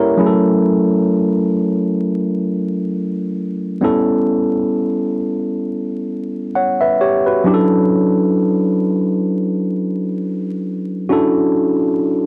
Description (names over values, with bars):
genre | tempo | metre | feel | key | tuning
R&B | 66 BPM | 4/4 | swing 56% on 16ths | D major | A4 = 440 Hz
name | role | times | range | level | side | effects
tine electric piano | solo | 0.0-12.3 s | F#3 to F#5 | -17 LUFS | equal | none
room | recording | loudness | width
wet booth ambience, RT60 0.2 s | home recording on cassette, vinyl crackle | -17 LUFS | mono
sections
0.2-12.3 A section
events
none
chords
0.2 F#m7; 3.8 A9; 7.4 Dmaj9